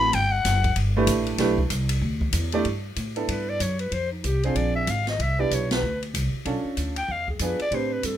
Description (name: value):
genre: jazz, small-group swing and bop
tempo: 189 BPM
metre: 4/4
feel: swing 61% on 8ths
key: G major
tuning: A4 = 444 Hz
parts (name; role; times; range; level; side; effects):
- growling clarinet; melody; 0.0-0.8, 3.3-8.2 s; Eb4 to B5; -26 LUFS; left 2 dB; none
- clear upright piano; accompaniment; 0.0-8.2 s; A3 to D5; -26 LUFS; right 4 dB; none
- upright bass; bass; 0.0-8.2 s; F#1 to A2; -26 LUFS; equal; none
- open jazz drum kit; drums; 0.1-8.1 s; hi-hat, kick drum, ride cymbal, snare drum; -30 LUFS; equal; none
room: little or no reverb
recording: minimal, uncompressed stereo recording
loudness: -22 LUFS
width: side -11 dB against mid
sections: 0.0-2.7 A section; 2.7-8.2 B section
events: clarinet solo 0.0-2.7; band accent 5.7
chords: 0.1 G6; 3.9 Fm; 4.6 Bb9; 5.2 Cmaj9; 6.5 Bm7b5; 7.1 E7b9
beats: | 0.13 0.45 0.76 1.08 | 1.39 1.71 2.02 2.34 | 2.65 2.97 3.29 3.60 | 3.92 4.24 4.56 4.87 | 5.19 5.51 5.83 6.14 | 6.46 6.78 7.09 7.41 | 7.73 8.05